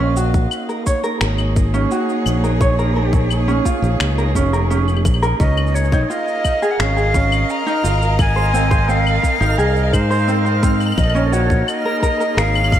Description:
folktronica; 86 BPM; 4/4; straight; Db major; A4 = 439 Hz
dark string quartet; sustained chords; 0.0-12.8 s; Bb3 to F5; -24 LUFS; right 2 dB
ukulele; arpeggios; 0.0-12.8 s; C4 to Db5; -21 LUFS; right 2 dB; tape echo
modern bright fingered electric bass; bass; 0.0-12.8 s; F1 to Ab2; -18 LUFS; equal
electronic cabasa, claves and finger snaps; drums; 0.2-12.8 s; -26 LUFS; left 3 dB; small room ambience
electronic kick drum; drums; 0.3-12.8 s; -17 LUFS; equal; small room ambience
breathy bright jazz flute; melody; 5.4-12.8 s; C5 to Bb5; -21 LUFS; left 1 dB; vintage 12-bit sampler grit, tape echo
backwards swelling texture; texture; 6.3-12.8 s; F6; -32 LUFS; right 2 dB; built-in reverb
moderate plate reverb, RT60 2.0 s; dreamy mix soaked in reverb; -14 LUFS; side -11 dB against mid
0.0-12.8 A section
0.0 Gb/Bb; 2.6 Bbm; 5.4 Dbadd9; 8.2 Ab; 11.0 Gb/Bb

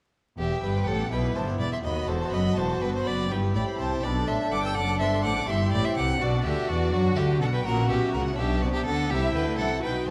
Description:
classical, baroque-style concerto movement with solo episodes; 82 BPM (dotted quarters); 6/8; straight; E minor; A4 = 440 Hz
clear violin; melody; 0.4-10.1 s; F#4 to G5; -33 LUFS; equal
rich chamber violin section; melody; 0.4-10.1 s; D5 to E6; -37 LUFS; equal
dark chamber violin section; second line; 0.4-10.1 s; D4 to A4; -34 LUFS; equal
harpsichord; accompaniment; 0.4-10.1 s; D#2 to D5; -38 LUFS; equal
rich chamber viola section; accompaniment; 0.4-10.1 s; B3 to E4; -37 LUFS; equal
rich chamber cello section; bass; 0.4-10.1 s; D#2 to F#3; -32 LUFS; equal
rich chamber double bass section; bass; 0.4-10.1 s; E1 to F#2; -32 LUFS; equal
wet recital hall reverb, RT60 1.4 s; dark, warm production, vinyl crackle; -26 LUFS; mono
0.4-10.1 A section
0.4 Em; 1.8 B7; 2.6 Em; 3.3 G; 4.8 D7/F#; 5.5 G; 6.2 Bm; 7.7 F#7/A#; 8.4 Bm; 9.1 C

